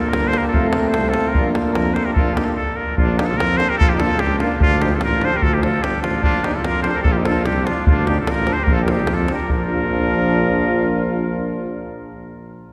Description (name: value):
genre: balkan folk, Balkan brass band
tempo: 148 BPM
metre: 2/4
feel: swing 55% on 16ths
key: Bb major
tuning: A4 = 440 Hz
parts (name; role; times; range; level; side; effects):
- cornet with straight mute; melody; 0.0-11.9 s; F4 to C5; -25 LUFS; equal; none
- clear trumpet; second line; 0.0-11.9 s; D4 to A4; -30 LUFS; equal; none
- warm euphonium; accompaniment; 0.0-11.9 s; C4 to D4; -30 LUFS; equal; none
- warm trombone; accompaniment; 0.0-11.8 s; F3 to Bb3; -28 LUFS; equal; none
- mellow tuba; bass; 0.1-11.9 s; F1 to F2; -25 LUFS; equal; none
- davul; percussion; 0.1-9.7 s; none; -24 LUFS; equal; none
room: wet cathedral reverb, RT60 4.5 s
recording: recorded in a church or concert hall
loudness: -18 LUFS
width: mono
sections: 0.0-3.0 A section; 3.0-9.5 B section; 9.5-11.1 C section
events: stop 2.6-3.0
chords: 0.0 Bb; 0.5 F; 1.3 Bb; 4.6 Dm; 6.2 Bb; 7.9 Dm; 8.7 Bb